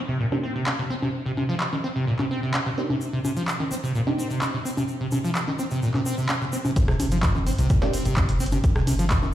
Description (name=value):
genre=acid house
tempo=128 BPM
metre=4/4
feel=straight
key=C minor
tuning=A4 = 437 Hz
part: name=acid bass, saw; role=riff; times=0.1-9.3 s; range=Bb2 to C4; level=-26 LUFS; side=equal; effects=overdrive, lush chorus, sidechain pumping, tape echo
part: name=filtered dub chord stab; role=stabs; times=0.3-4.2, 7.8-7.9 s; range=Bb3 to G4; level=-32 LUFS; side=right 3 dB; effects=phaser, analog chorus, vintage 12-bit sampler grit, tape echo
part: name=punchy analog drum machine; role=drums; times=0.3-9.3 s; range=congas, handclaps, hi-hat, rim click, snare drum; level=-28 LUFS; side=left 1 dB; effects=none
part: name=egg shaker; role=percussion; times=3.0-9.2 s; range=none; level=-40 LUFS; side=left 2 dB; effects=none
part: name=round analog bass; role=bass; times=6.8-9.3 s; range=G1 to C2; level=-25 LUFS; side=equal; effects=sidechain pumping
part: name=electronic kick drum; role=drums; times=6.8-9.2 s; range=none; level=-22 LUFS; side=equal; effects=none
room=moderate lush hall reverb, RT60 1.8 s, digital ambience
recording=played on a big sound system in a bare room, large studio reverb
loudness=-22 LUFS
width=side -12 dB against mid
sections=0.0-6.8 A section; 6.8-9.3 B section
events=drop 6.8-9.3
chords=0.0 N.C.; 6.8 C5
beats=0.20 0.67 | 1.14 1.61 2.08 2.54 | 3.01 3.48 3.95 4.42 | 4.89 5.36 5.83 6.29 | 6.76 7.23 7.70 8.17 | 8.64 9.11